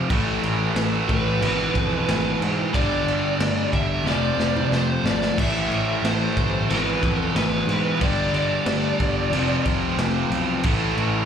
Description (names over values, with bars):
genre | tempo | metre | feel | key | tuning
hard rock | 91 BPM | 4/4 | straight | A minor | A4 = 439 Hz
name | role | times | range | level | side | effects
overdriven tonewheel organ | sustained chords | 0.0-11.3 s | E3 to C5 | -37 LUFS | right 1 dB | none
overdriven semi-hollow guitar | riff | 0.0-11.3 s | E2 to A3 | -27 LUFS | left 10 dB | slapback echo
tight distorted guitar | riff | 0.0-11.3 s | E2 to A3 | -27 LUFS | right 13 dB | distortion, slapback echo
fuzz picked electric bass | bass | 0.1-11.2 s | F1 to G#2 | -27 LUFS | equal | overdrive
raw garage drum kit | drums | 0.1-11.1 s | crash cymbal, kick drum, snare drum, toms | -25 LUFS | equal | none
lead guitar through a small cranked amp | melody | 1.1-9.6 s | B4 to E5 | -26 LUFS | left 1 dB | overdrive, slapback echo
room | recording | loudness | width
little or no reverb | live gig heard through the venue's PA, club reverb | -19 LUFS | side -8 dB against mid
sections
0.0-11.3 A section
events
drum fill 4.1-5.4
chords
0.1 A5; 1.4 E/G#; 2.7 G5; 4.1 F5; 5.4 Am; 6.7 E/G#; 8.0 G5; 9.3 F5; 10.6 A5